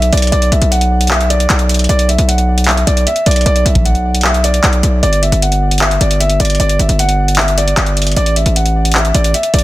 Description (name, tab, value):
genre	hip hop, trap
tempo	153 BPM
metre	4/4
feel	half-time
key	B minor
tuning	A4 = 439 Hz
part	dark grand piano	melody	0.0-9.6 s	D5 to F#5	-16 LUFS	equal	low-pass filter, ping-pong delay
part	distorted 808-style bass	bass	0.0-9.6 s	G1 to B1	-13 LUFS	equal	distortion
part	booming analog drum machine	drums	0.0-9.6 s	handclaps, hi-hat, kick drum	-16 LUFS	equal	none
room	little or no reverb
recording	dense, heavily limited modern master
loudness	-10 LUFS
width	side -16 dB against mid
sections	0.0-9.6 A section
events	none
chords	0.0 Bm; 5.0 G5; 8.2 Asus4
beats	| 0.32 0.71 1.11 1.50 | 1.89 2.28 2.67 3.07 | 3.46 3.85 4.24 4.63 | 5.03 5.42 5.81 6.20 | 6.60 6.99 7.38 7.77 | 8.16 8.56 8.95 9.34